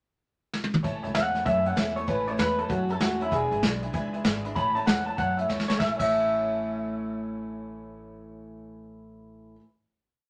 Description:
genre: rockabilly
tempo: 194 BPM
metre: 4/4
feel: swing 64% on 8ths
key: A major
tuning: A4 = 440 Hz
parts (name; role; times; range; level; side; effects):
- vintage brush drum kit; drums; 0.5-6.1 s; crash cymbal, hi-hat, kick drum, snare drum, toms; -30 LUFS; equal; none
- honky-tonk upright piano; accompaniment; 0.8-9.6 s; B4 to B5; -40 LUFS; equal; none
- picked steel-string acoustic guitar; accompaniment; 0.8-9.7 s; E2 to E4; -38 LUFS; equal; none
- upright bass; bass; 0.8-9.6 s; E1 to F#2; -37 LUFS; equal; none
- electric guitar through a small old amp; melody; 1.1-9.5 s; E4 to B5; -28 LUFS; equal; none
room: wet studio reverb, RT60 0.5 s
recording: none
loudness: -27 LUFS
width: mono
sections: 0.0-0.8 pickup bar; 0.8-5.8 A section; 5.8-8.3 final chord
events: drum fill 0.5-0.8, 5.5-5.8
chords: 0.0 N.C.; 0.8 A; 3.3 E7; 4.6 A

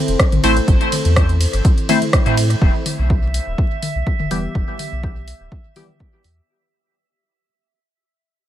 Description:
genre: dub techno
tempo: 124 BPM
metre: 4/4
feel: swing 53% on 16ths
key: E minor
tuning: A4 = 440 Hz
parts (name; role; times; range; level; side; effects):
- deep dark ambient pad; sustained chords; 0.0-2.6 s; C4 to C5; -26 LUFS; equal; chorus, built-in reverb, sidechain pumping
- pure sine sub bass; bass; 0.1-6.4 s; D1 to A2; -18 LUFS; equal; tube saturation, sidechain pumping
- deep house drum kit; drums; 0.1-6.3 s; hi-hat, ride cymbal, rim click; -23 LUFS; equal; dub echo
- electronic kick drum; drums; 0.2-6.1 s; none; -16 LUFS; equal; none
- electronic toms; percussion; 0.3-6.0 s; none; -27 LUFS; left 2 dB; sidechain pumping on toms, dub echo
- resonant sweep polysynth; stabs; 0.4-5.8 s; E3 to C5; -21 LUFS; left 1 dB; chorus, phaser, vintage 12-bit sampler grit, sidechain pumping, dub echo
- drifting glass-harmonics texture; texture; 2.9-6.5 s; E5; -30 LUFS; right 5 dB; chorus, built-in reverb, sidechain pumping
room: digital ambience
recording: vinyl crackle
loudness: -14 LUFS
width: side -12 dB against mid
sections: 0.0-2.6 A section; 2.6-6.5 B section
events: fade-out 2.6-6.5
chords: 0.0 Am; 2.6 E5

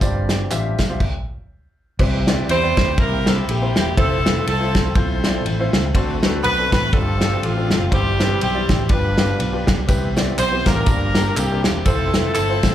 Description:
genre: uptempo gospel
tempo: 122 BPM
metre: 4/4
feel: swing 58% on 8ths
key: C major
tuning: A4 = 440 Hz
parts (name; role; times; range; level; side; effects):
- warm concert grand piano; accompaniment; 0.0-12.7 s; G2 to E5; -26 LUFS; left 3 dB; slapback echo
- tonewheel organ; sustained chords; 0.0-12.7 s; D3 to G4; -30 LUFS; right 5 dB; slow rotary speaker, overdrive, chorus vibrato
- fingered electric bass; bass; 0.0-12.7 s; E1 to E2; -22 LUFS; equal; none
- natural country drum kit; drums; 0.0-12.7 s; crash cymbal, hi-hat, kick drum, ride cymbal, snare drum; -20 LUFS; equal; none
- tambourine and handclaps; percussion; 0.0-0.9, 9.9-12.7 s; none; -33 LUFS; right 2 dB; none
- edgy saxophone section; melody; 2.5-12.7 s; Bb3 to C5; -21 LUFS; equal; slapback echo
room: light reverb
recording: live gig heard through the venue's PA, club reverb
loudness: -16 LUFS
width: side -11 dB against mid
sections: 0.0-2.0 A section; 2.0-12.7 B section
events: stop 1.0-2.0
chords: 0.0 G7sus4; 2.0 Cmaj7; 3.0 C7; 4.0 Fmaj7; 5.9 D7; 6.9 G9sus4; 7.9 C/G; 8.9 G7; 9.9 Cmaj7; 10.9 Gm7; 11.4 C9; 11.9 Fmaj7

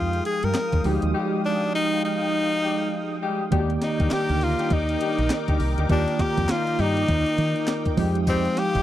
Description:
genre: R&B, new jack swing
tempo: 101 BPM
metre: 4/4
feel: swing 60% on 16ths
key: Eb major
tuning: A4 = 439 Hz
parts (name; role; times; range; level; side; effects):
- clear tenor saxophone; melody; 0.0-8.8 s; C4 to Bb4; -25 LUFS; left 2 dB; none
- tine electric piano; accompaniment; 0.0-8.8 s; Eb3 to D5; -28 LUFS; right 3 dB; medium stereo tremolo
- lush unison pad; sustained chords; 0.0-8.8 s; Ab3 to Eb6; -31 LUFS; right 1 dB; chorus, phaser
- deep dub fingered electric bass; bass; 0.0-8.8 s; F1 to Eb3; -25 LUFS; equal; none
- crisp 8-bit digital drum machine; drums; 0.1-8.8 s; handclaps, hi-hat, kick drum, snare drum, tambourine; -26 LUFS; equal; none
- mellow horn section; stabs; 0.8-8.8 s; G3 to G4; -30 LUFS; left 7 dB; none
room: little or no reverb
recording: dry, close 1970s-style studio recording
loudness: -21 LUFS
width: side -12 dB against mid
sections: 0.0-3.5 A section; 3.5-8.8 B section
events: none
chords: 0.0 Fm9; 3.5 Ebmaj7; 8.0 Fm9

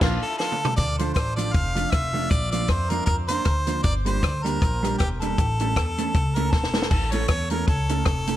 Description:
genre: ska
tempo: 156 BPM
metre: 4/4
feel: swing 56% on 8ths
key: D minor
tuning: A4 = 442 Hz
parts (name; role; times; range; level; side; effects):
- mellow electric guitar; accompaniment; 0.0-8.4 s; F3 to A4; -29 LUFS; right 3 dB; wide subtle chorus, analog delay
- upright bass; bass; 0.0-8.4 s; E1 to F2; -27 LUFS; equal; none
- compact cocktail drum kit; drums; 0.0-8.4 s; crash cymbal, hi-hat, kick drum, rim click, snare drum, toms; -24 LUFS; equal; none
- clear harmonica; melody; 0.2-8.4 s; G4 to F5; -27 LUFS; equal; analog delay
room: light reverb, small room ambience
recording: none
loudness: -21 LUFS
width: side -13 dB against mid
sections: 0.8-8.4 A section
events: band accent 0.0-0.8; drum fill 0.4-0.8, 6.5-6.9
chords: 0.0 Bb; 0.8 Dm; 2.3 Bb; 3.9 Gm; 5.4 A

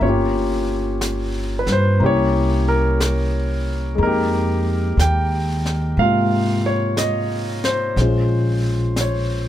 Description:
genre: jazz ballad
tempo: 60 BPM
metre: 4/4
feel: swing 66% on 8ths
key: unclear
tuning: A4 = 440 Hz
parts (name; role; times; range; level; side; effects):
- warm concert grand piano; accompaniment; 0.0-9.5 s; C3 to G5; -20 LUFS; left 1 dB; none
- upright bass; bass; 0.0-9.5 s; G1 to Ab2; -20 LUFS; equal; none
- jazz brush drum kit; drums; 0.0-9.5 s; brushed snare drum, hi-hat, snare drum; -30 LUFS; left 1 dB; none
room: little or no reverb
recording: close, detailed microphones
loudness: -17 LUFS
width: side -12 dB against mid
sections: 0.0-9.5 A section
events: none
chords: 0.0 Gm7b5; 2.0 C7b9; 4.0 Fm11; 8.0 Bbm9

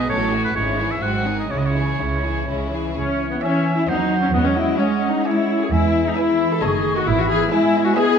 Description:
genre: quick classical-period movement for symphony orchestra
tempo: 120-136 BPM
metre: 3/4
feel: rubato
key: C# minor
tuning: A4 = 442 Hz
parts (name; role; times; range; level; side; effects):
- warm chamber violin section; melody; 0.0-8.2 s; E4 to A5; -32 LUFS; left 4 dB; none
- clear oboe; second line; 0.0-8.2 s; B4 to F#5; -27 LUFS; right 1 dB; none
- warm studio violin section; second line; 0.0-8.2 s; A3 to E5; -31 LUFS; left 3 dB; none
- rich chamber viola section; accompaniment; 0.0-8.2 s; D#3 to A4; -21 LUFS; left 2 dB; none
- rich chamber double bass section; bass; 0.0-7.4 s; F#1 to E2; -25 LUFS; right 4 dB; none
- warm symphonic cello section; bass; 0.0-8.2 s; G#2 to B3; -25 LUFS; right 2 dB; none
- mellow large flute ensemble; second line; 3.0-8.2 s; E5 to C#6; -27 LUFS; equal; none
- dark French horn section; sustained chords; 3.0-8.2 s; E3 to E4; -26 LUFS; left 3 dB; none
room: moderate scoring stage reverb, RT60 1.9 s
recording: none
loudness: -17 LUFS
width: side -7 dB against mid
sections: 0.0-3.0 A section; 3.0-8.2 A section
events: none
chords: 0.1 F#m/A; 0.6 C#m/G#; 1.0 G#7; 1.5 C#m; 3.9 Cdim/Eb; 4.3 C#m/E; 5.7 E; 6.6 D#dim/F#; 7.1 E/G#

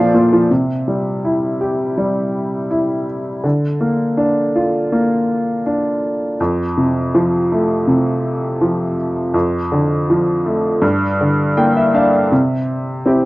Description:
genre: folk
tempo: 81 BPM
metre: 4/4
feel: straight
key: unclear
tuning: A4 = 440 Hz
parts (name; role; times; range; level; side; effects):
- clear upright piano; melody; 0.0-13.3 s; F2 to G5; -14 LUFS; equal; none
room: small room ambience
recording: dry, close 1970s-style studio recording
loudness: -14 LUFS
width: side -19 dB against mid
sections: 0.5-12.3 A section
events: upright piano fill 11.2-12.3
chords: 0.5 C; 3.4 Bb/D; 6.4 F; 9.3 Dm/F; 10.8 Gm; 12.3 C

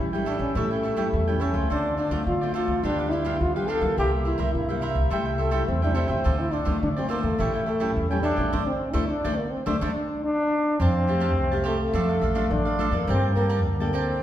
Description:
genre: samba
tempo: 106 BPM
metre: 4/4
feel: straight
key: D minor, F major from 10.8 s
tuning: A4 = 444 Hz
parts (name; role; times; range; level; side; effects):
- breathy trombone; melody; 0.0-14.2 s; A3 to A4; -26 LUFS; equal; none
- nylon-string guitar; accompaniment; 0.0-14.2 s; G2 to A4; -30 LUFS; left 3 dB; none
- upright bass; bass; 0.0-14.1 s; A1 to D3; -26 LUFS; equal; none
- cavaquinho; accompaniment; 0.1-14.2 s; D4 to A5; -31 LUFS; right 3 dB; none
room: wet recital hall reverb, RT60 1.7 s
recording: recorded in a church or concert hall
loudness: -22 LUFS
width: side -12 dB against mid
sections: 0.0-10.8 A section; 10.8-14.2 B section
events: band accent 8.5-10.8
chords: 0.0 A7; 1.7 Dm7; 2.8 G7/D; 4.0 C7; 5.1 Am7/C; 6.3 Dm7; 7.4 A7; 8.5 D5; 10.8 Fadd9; 11.9 Dm; 13.1 Gmadd9

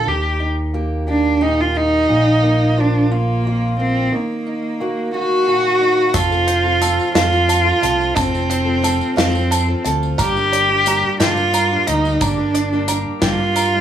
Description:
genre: indie folk with a building arrangement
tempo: 59 BPM (dotted quarters)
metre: 6/8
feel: straight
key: unclear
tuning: A4 = 440 Hz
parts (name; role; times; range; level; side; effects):
- warm cello; melody; 0.0-13.8 s; Bb3 to G4; -17 LUFS; right 1 dB; none
- fingerpicked acoustic archtop guitar; accompaniment; 0.0-6.1 s; F2 to G4; -23 LUFS; right 1 dB; none
- picked electric bass; bass; 0.0-13.8 s; F1 to G2; -21 LUFS; equal; none
- picked old ladder-braced acoustic guitar; accompaniment; 6.1-13.8 s; G2 to A4; -26 LUFS; left 6 dB; none
- bluegrass banjo; arpeggios; 6.1-13.8 s; A4 to Bb5; -24 LUFS; right 7 dB; none
- natural country drum kit; drums; 6.1-13.7 s; hi-hat, kick drum, snare drum; -21 LUFS; left 1 dB; none
- tambourine; percussion; 6.1-13.7 s; none; -30 LUFS; left 11 dB; none
room: little or no reverb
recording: small room ambience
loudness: -14 LUFS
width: side -10 dB against mid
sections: 0.0-6.1 A section; 6.1-13.8 B section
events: none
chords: 0.1 Eb; 2.1 Bb5; 4.1 Ebm; 6.1 F; 10.2 Gm

